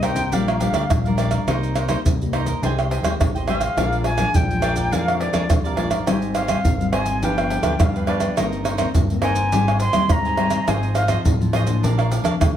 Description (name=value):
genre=samba and choro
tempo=104 BPM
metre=4/4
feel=straight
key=unclear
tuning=A4 = 440 Hz
part: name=jazz flute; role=melody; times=0.0-11.1 s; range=D5 to C6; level=-24 LUFS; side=left 1 dB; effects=tape echo
part: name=cavaquinho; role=accompaniment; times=0.0-12.3 s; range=D4 to Ab5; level=-28 LUFS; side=right 5 dB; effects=none
part: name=nylon-string guitar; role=accompaniment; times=0.0-12.6 s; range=F2 to G4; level=-26 LUFS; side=left 3 dB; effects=none
part: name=fat analog bass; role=bass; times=0.0-12.6 s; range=G1 to Ab2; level=-24 LUFS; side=equal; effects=none
part: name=maracas, pandeiro, tamborim and surdo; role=percussion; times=0.0-12.6 s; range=none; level=-21 LUFS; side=right 1 dB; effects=none
room=wet studio reverb, RT60 0.7 s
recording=heard from further back in the room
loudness=-18 LUFS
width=side -10 dB against mid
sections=0.0-12.6 A section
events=flute solo 0.0-12.6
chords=0.3 Gm7/Bb; 1.5 Cm7; 2.6 Abmaj7/C; 3.8 Bb7; 6.1 Abmaj7; 7.2 G7; 8.4 Cm7/G; 9.5 Abmaj7; 10.7 Fm7/Ab; 11.8 Bb